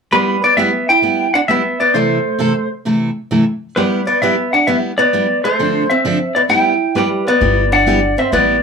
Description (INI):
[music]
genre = country, western swing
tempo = 132 BPM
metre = 4/4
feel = swing 68% on 8ths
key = G major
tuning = A4 = 440 Hz
[part]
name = clean lap steel guitar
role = melody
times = 0.1-8.6 s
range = G4 to G5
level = -14 LUFS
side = equal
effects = none
[part]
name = archtop guitar, miked and amplified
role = second line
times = 0.1-8.6 s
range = G3 to E4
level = -19 LUFS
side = equal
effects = none
[part]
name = picked steel-string acoustic guitar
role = accompaniment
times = 0.1-8.6 s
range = C3 to A4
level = -18 LUFS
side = right 1 dB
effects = none
[part]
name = upright bass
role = bass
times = 7.4-8.6 s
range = G1 to A1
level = -19 LUFS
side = equal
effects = none
[sound]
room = moderate small room ambience, RT60 0.5 s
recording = band playing live in one room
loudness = -12 LUFS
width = side -5 dB against mid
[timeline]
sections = 0.1-7.4 A section; 7.4-8.6 B section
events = none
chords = 0.1 G6; 1.9 C6; 3.8 G6; 5.6 Dm7; 6.5 G6